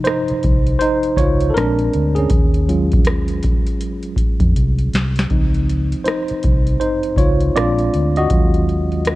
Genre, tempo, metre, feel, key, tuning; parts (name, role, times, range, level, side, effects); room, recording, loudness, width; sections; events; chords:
lo-fi hip hop; 80 BPM; 4/4; swing 64% on 16ths; Db major; A4 = 439 Hz
tine electric piano; accompaniment; 0.0-9.2 s; C3 to Eb5; -19 LUFS; equal; medium stereo tremolo, low-pass filter
booming analog drum machine; drums; 0.0-9.2 s; hi-hat, kick drum, rim click, snare drum; -18 LUFS; equal
vintage muted fingered electric bass; bass; 0.3-9.2 s; Bb1 to F2; -19 LUFS; equal
little or no reverb; cassette tape; -14 LUFS; side -17 dB against mid
0.0-9.2 A section
tine electric piano solo 0.0-9.2; drum fill 4.6-5.3
0.0 Dbmaj9; 1.6 Bb7; 2.3 Ebm11; 5.3 Dbmaj9; 7.6 Bb7; 8.3 Ebm11